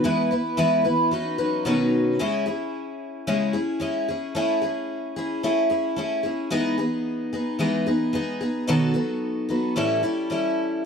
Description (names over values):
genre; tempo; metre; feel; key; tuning
rock; 111 BPM; 4/4; straight; E major; A4 = 439 Hz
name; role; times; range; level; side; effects
picked twelve-string acoustic guitar; solo; 0.0-10.8 s; A2 to B4; -22 LUFS; left 1 dB; none
room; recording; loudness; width
light reverb; dry, close 1970s-style studio recording; -22 LUFS; side -6 dB against mid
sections
0.0-2.2 A section; 2.2-10.8 B section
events
none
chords
0.0 E; 1.1 Badd9; 2.2 C#m; 4.1 Amaj7; 6.5 Emaj7; 8.7 B7; 9.8 A7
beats
| 0.04 0.58 1.12 1.66 | 2.20 2.74 3.28 3.82 | 4.36 4.90 5.44 5.99 | 6.53 7.07 7.61 8.14 | 8.69 9.22 9.76 10.30 | 10.84